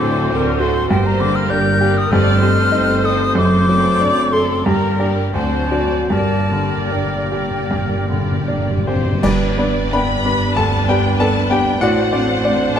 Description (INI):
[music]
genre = classical, romantic movement for piano and orchestra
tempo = 73-103 BPM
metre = 4/4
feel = rubato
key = G minor, G major from 9.2 s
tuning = A4 = 437 Hz
[part]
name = clear baby grand piano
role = melody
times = 0.0-12.8 s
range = D2 to B5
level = -18 LUFS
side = equal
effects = none
[part]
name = dark symphonic violin section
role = melody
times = 0.0-12.8 s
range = C5 to B5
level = -30 LUFS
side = left 4 dB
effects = none
[part]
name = bright concert flute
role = second line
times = 0.0-8.9 s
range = G5 to G6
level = -21 LUFS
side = left 3 dB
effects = none
[part]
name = mellow clarinet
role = second line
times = 0.0-8.9 s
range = F#4 to A4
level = -28 LUFS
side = left 5 dB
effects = none
[part]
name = rich symphonic violin section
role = second line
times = 0.0-12.8 s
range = A3 to B5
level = -28 LUFS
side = left 3 dB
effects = none
[part]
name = warm oboe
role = second line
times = 0.0-8.9 s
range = Bb4 to C5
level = -29 LUFS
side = equal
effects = none
[part]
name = clear symphonic viola section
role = accompaniment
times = 0.0-12.8 s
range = D4 to D5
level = -25 LUFS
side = right 3 dB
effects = none
[part]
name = mellow French horn section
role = sustained chords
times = 0.0-8.8 s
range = F#3 to C4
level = -25 LUFS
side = left 4 dB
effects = none
[part]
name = clear symphonic double bass section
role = bass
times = 0.0-12.8 s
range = F#1 to D2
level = -24 LUFS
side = right 4 dB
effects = none
[part]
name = rich symphonic cello section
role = bass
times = 0.0-12.8 s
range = D2 to D3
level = -25 LUFS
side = right 2 dB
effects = none
[part]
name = timpani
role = percussion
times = 2.1-9.2 s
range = G2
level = -25 LUFS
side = left 1 dB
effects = none
[part]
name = cymbal swell, clash cymbals and concert bass drum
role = percussion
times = 6.1-10.5 s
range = none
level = -28 LUFS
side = equal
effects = none
[sound]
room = light reverb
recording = close, detailed microphones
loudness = -14 LUFS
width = side -8 dB against mid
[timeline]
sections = 0.0-9.2 A section; 9.2-12.8 B section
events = timpani fill 6.1-9.2; band accent 9.2-9.9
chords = 0.0 D7; 0.9 Gm; 2.1 Am7b5/G; 3.4 D7/F#; 4.7 Gm; 5.3 D7; 6.1 Gm; 9.2 G; 11.8 D7/A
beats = 0.30 | 0.89 1.50 2.11 2.73 | 3.37 4.01 4.67 5.35 | 6.11 6.92 7.71 8.48 | 9.23 9.93 10.56 11.18 | 11.80 12.44